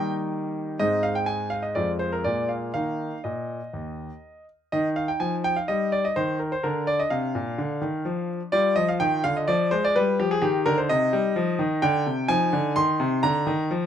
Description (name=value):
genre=classical-period piano sonatina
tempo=126 BPM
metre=4/4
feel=rubato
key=Eb major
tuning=A4 = 440 Hz
part: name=bright concert grand piano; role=solo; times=0.0-13.9 s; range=Eb2 to C6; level=-22 LUFS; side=equal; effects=none
room=light reverb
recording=none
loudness=-22 LUFS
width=side -9 dB against mid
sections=0.0-4.7 A section; 4.7-13.9 B section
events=none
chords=0.0 Eb; 0.8 Ab; 1.8 Fm; 2.2 Bb7; 2.7 Eb5; 4.7 Eb; 6.6 Bb; 8.5 G5; 10.4 Cm